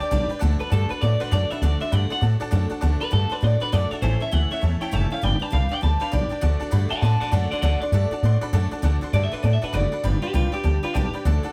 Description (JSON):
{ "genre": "rockabilly", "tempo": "200 BPM", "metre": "4/4", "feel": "swing 62% on 8ths", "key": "D major", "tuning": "A4 = 440 Hz", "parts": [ { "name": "electric guitar through a small old amp", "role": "melody", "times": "0.0-11.2 s", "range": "F4 to A5", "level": "-30 LUFS", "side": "equal", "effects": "tape echo" }, { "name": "picked steel-string acoustic guitar", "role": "accompaniment", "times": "0.0-11.5 s", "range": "A2 to B4", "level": "-34 LUFS", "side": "equal", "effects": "none" }, { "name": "tack piano", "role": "accompaniment", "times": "0.0-11.5 s", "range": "C#5 to D6", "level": "-36 LUFS", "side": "equal", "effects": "none" }, { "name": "upright bass", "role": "bass", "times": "0.0-11.5 s", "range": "F#1 to A2", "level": "-23 LUFS", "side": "equal", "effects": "none" } ], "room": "small room ambience", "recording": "none", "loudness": "-22 LUFS", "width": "mono", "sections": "0.0-8.8 A section; 8.8-11.5 B section", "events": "clean electric guitar solo 8.8-11.5", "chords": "0.4 D; 4.0 A; 5.2 G; 6.4 D; 10.0 G", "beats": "0.12 | 0.42 0.72 1.02 1.32 | 1.62 1.92 2.22 2.52 | 2.83 3.12 3.42 3.73 | 4.03 4.33 4.63 4.93 | 5.23 5.53 5.83 6.13 | 6.43 6.73 7.03 7.33 | 7.63 7.93 8.23 8.54 | 8.84 9.14 9.44 9.74 | 10.04 10.35 10.65 10.95 | 11.25" }